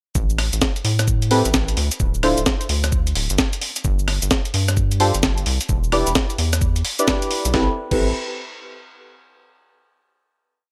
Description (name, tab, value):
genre	UK garage, two-step garage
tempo	130 BPM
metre	4/4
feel	swing 63% on 16ths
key	A minor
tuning	A4 = 435 Hz
part	rubbery square bass	bass	0.2-8.1 s	D1 to A2	-23 LUFS	equal	none
part	breakbeat sampler-style drum kit	drums	0.2-8.0 s	crash cymbal, hi-hat, rim click, shaker, snare drum	-24 LUFS	equal	none
part	electronic kick drum	drums	0.2-8.0 s	none	-25 LUFS	equal	none
part	deep mellow chord stab	stabs	1.3-8.1 s	C4 to D5	-24 LUFS	equal	chorus, phaser, tape echo
room	digital ambience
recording	dry, gritty hardware recording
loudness	-20 LUFS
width	mono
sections	0.2-7.5 drop; 7.5-9.4 final chord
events	drop 0.2-7.5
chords	0.2 N.C.; 2.0 Dm9; 3.6 Gsus4; 5.7 Em7; 7.5 Am9